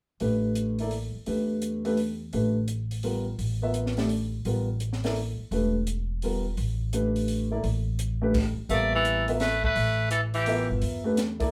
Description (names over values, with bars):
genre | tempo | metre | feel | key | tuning
modal jazz | 170 BPM | 3/4 | swing 66% on 8ths | unclear | A4 = 440 Hz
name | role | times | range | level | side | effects
warm grand piano | accompaniment | 0.2-11.5 s | G3 to F5 | -30 LUFS | equal | none
upright bass | bass | 0.2-11.5 s | E1 to E2 | -32 LUFS | equal | none
compact cocktail drum kit | drums | 0.2-11.5 s | crash cymbal, hi-hat, kick drum, snare drum | -38 LUFS | equal | none
trumpet with metal mute | melody | 8.7-10.7 s | G4 to D5 | -30 LUFS | equal | none
edgy tenor saxophone | second line | 8.7-10.7 s | E3 to A3 | -30 LUFS | equal | none
room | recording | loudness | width
wet small room reverb, RT60 0.6 s | band playing live in one room | -27 LUFS | mono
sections
0.2-8.7 A section; 8.7-11.5 B section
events
none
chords
0.2 A9sus4; 8.7 A7sus2